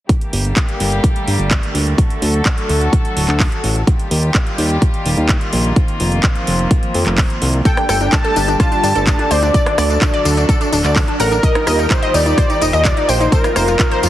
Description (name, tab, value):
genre	progressive house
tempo	127 BPM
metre	4/4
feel	straight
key	G minor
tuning	A4 = 441 Hz
part	rich chamber string section	sustained chords	0.1-14.1 s	C3 to A4	-22 LUFS	equal	vintage 12-bit sampler grit, sidechain pumping, low-pass filter
part	electronic kick drum	drums	0.1-13.9 s	none	-15 LUFS	equal	none
part	house drum kit	drums	0.1-14.1 s	handclaps, hi-hat, rim click, tambourine	-22 LUFS	equal	none
part	fat analog bass	bass	0.3-14.1 s	D1 to G2	-17 LUFS	equal	sidechain pumping
part	wide unison lead	melody	7.7-14.1 s	Bb4 to A5	-18 LUFS	equal	tape echo
part	wide unison pluck	arpeggios	7.7-14.1 s	D4 to G5	-19 LUFS	equal	sidechain pumping, tape echo
room	light reverb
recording	heavily compressed radio sound, multiband compression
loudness	-13 LUFS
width	side -13 dB against mid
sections	0.1-14.1 A section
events	none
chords	0.1 Gmadd9; 2.0 D; 3.9 Ebadd9; 5.8 F7sus4; 7.7 Gmadd9; 9.5 D; 11.4 Ebadd9; 13.3 F7sus4